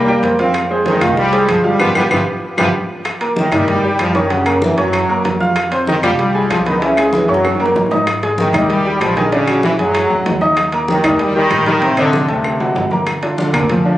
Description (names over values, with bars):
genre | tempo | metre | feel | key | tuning
latin, salsa | 192 BPM | 4/4 | straight | unclear | A4 = 443 Hz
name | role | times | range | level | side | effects
brilliant trombone section | melody | 0.0-14.0 s | C3 to C4 | -17 LUFS | equal | none
bright upright piano | accompaniment | 0.0-14.0 s | Bb2 to F6 | -16 LUFS | equal | none
upright bass | bass | 0.0-14.0 s | G1 to G#2 | -25 LUFS | equal | none
bongos | percussion | 0.1-13.9 s | none | -28 LUFS | left 3 dB | none
congas | percussion | 0.1-14.0 s | none | -24 LUFS | equal | none
timbales | percussion | 0.2-13.9 s | none | -26 LUFS | right 3 dB | none
claves | percussion | 0.5-13.7 s | none | -24 LUFS | left 1 dB | none
room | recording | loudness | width
moderate plate reverb, RT60 3.4 s | recorded on a phone in the room, club reverb | -12 LUFS | side -14 dB against mid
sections
0.0-3.1 A section; 3.1-13.1 B section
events
band accent 1.8-3.1; drum fill 2.3-3.1, 7.1-8.1, 12.4-13.1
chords
0.0 C7; 0.5 Fm9; 1.8 G7; 3.1 Eb7#9; 4.3 F#; 5.6 Fmadd9; 6.8 Dbm; 7.4 F#add9; 8.1 Absus2; 9.3 Bb7alt; 10.6 Eb; 11.8 Adim; 12.4 D7; 13.1 Gm7